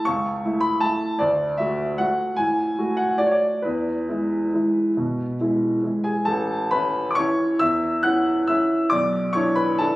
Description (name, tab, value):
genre	classical, piano waltz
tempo	131-162 BPM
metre	3/4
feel	rubato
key	A major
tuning	A4 = 440 Hz
part	warm baby grand piano	solo	0.0-10.0 s	A1 to F#6	-20 LUFS	equal	none
room	wet recital hall reverb, RT60 1.7 s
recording	recorded on a phone in the room, club reverb, compression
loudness	-20 LUFS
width	side -18 dB against mid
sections	0.0-6.3 A section; 6.3-10.0 B section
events	none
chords	0.0 A/C#; 1.2 D; 3.6 E; 6.3 A; 8.9 E7(no3)/B